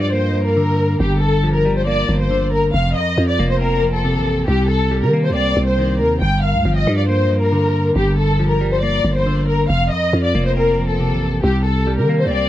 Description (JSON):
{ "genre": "hip hop, drill", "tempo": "138 BPM", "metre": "4/4", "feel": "half-time", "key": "G minor", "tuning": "A4 = 440 Hz", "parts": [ { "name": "dark studio violin section", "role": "melody", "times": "0.0-12.5 s", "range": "G4 to G5", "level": "-19 LUFS", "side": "left 2 dB", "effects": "digital delay" }, { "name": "clean electric guitar", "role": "accompaniment", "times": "0.0-12.5 s", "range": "F2 to C4", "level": "-20 LUFS", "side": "equal", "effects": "none" }, { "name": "growling 808-style bass", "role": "bass", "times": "0.0-12.5 s", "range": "F1 to Eb3", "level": "-18 LUFS", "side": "right 1 dB", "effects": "none" } ], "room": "little or no reverb", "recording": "none", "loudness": "-15 LUFS", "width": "side -13 dB against mid", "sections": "0.0-6.2 A section; 6.2-12.5 A section", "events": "none", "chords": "0.0 Gm7; 2.7 Fsus4; 4.5 Cm7; 6.2 Gm7; 9.7 Fsus4; 11.4 Cm7", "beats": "0.13 0.57 | 1.00 1.44 1.87 2.31 | 2.74 3.18 3.61 4.05 | 4.48 4.92 5.35 5.79 | 6.22 6.65 7.09 7.52 | 7.96 8.39 8.83 9.26 | 9.70 10.13 10.57 11.00 | 11.44 11.87 12.31" }